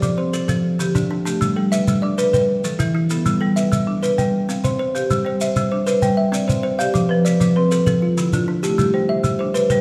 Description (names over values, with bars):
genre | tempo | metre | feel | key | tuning
southern african traditional, mbira-style interlocking cycle | 130 BPM (dotted quarters) | 12/8 | straight | G mixolydian | A4 = 440 Hz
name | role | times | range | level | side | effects
kalimba | arpeggios | 0.0-9.8 s | D3 to G5 | -22 LUFS | equal | none
marimba with medium hard mallets | arpeggios | 0.0-9.8 s | D3 to F5 | -23 LUFS | equal | none
shekere | percussion | 0.0-9.8 s | none | -27 LUFS | equal | none
room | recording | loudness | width
wet recital hall reverb, RT60 1.8 s | none | -19 LUFS | mono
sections
0.0-5.1 A section; 5.1-9.8 B section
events
none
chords
0.5 Dm; 1.4 G; 2.3 Em; 3.3 G; 4.2 C5; 5.1 G; 6.0 C; 6.9 F; 7.9 Dm; 8.8 G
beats
0.02 0.48 0.95 | 1.41 1.87 2.33 2.79 | 3.26 3.72 4.18 4.64 | 5.10 5.57 6.03 6.49 | 6.95 7.41 7.87 8.33 | 8.79 9.24 9.70